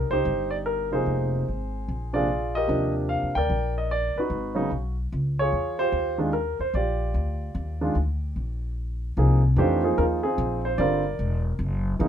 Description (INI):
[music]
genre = jazz piano trio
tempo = 148 BPM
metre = 4/4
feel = swing 64% on 8ths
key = Eb major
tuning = A4 = 440 Hz
[part]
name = warm grand piano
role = melody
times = 0.0-12.1 s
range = C3 to G5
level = -25 LUFS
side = right 1 dB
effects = none
[part]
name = upright bass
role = bass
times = 0.0-12.1 s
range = Fb1 to F2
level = -26 LUFS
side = left 1 dB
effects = none
[sound]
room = light reverb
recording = minimal, uncompressed stereo recording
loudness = -23 LUFS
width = side -9 dB against mid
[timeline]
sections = 0.0-9.2 A section; 9.2-12.1 B section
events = none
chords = 0.0 Cm7; 1.1 Fm7; 1.9 Bb9; 2.7 Ebmaj9; 4.3 Abm7; 5.1 Db; 5.9 Ebmaj9; 9.2 Ab69; 10.8 Gm7